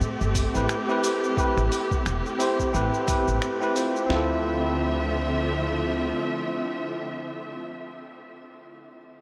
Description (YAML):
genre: sunset chillout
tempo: 88 BPM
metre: 4/4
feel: swing 58% on 16ths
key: D minor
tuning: A4 = 436 Hz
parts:
  - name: warm studio string section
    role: sustained chords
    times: 0.0-7.6 s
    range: D3 to E5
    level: -31 LUFS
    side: equal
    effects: shimmer reverb
  - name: upright bass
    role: bass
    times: 0.0-6.1 s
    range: E1 to A2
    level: -30 LUFS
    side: equal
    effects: none
  - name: dusty soul sampler-style drum kit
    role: drums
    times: 0.0-4.1 s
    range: finger snaps, hi-hat, shaker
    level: -37 LUFS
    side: equal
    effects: none
  - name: dusty soul sampler-style drum kit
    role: drums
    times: 0.4-4.3 s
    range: kick drum, snare drum, toms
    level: -31 LUFS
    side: equal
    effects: none
  - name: bell-like tine electric piano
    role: accompaniment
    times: 0.5-7.7 s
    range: C4 to C5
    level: -30 LUFS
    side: equal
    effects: analog delay, shimmer reverb
room: wet huge ambient reverb, RT60 9.4 s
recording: dreamy mix soaked in reverb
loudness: -25 LUFS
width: mono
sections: 0.0-4.1 A section; 4.1-6.8 B section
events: none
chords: 0.0 Am9; 4.1 Dm9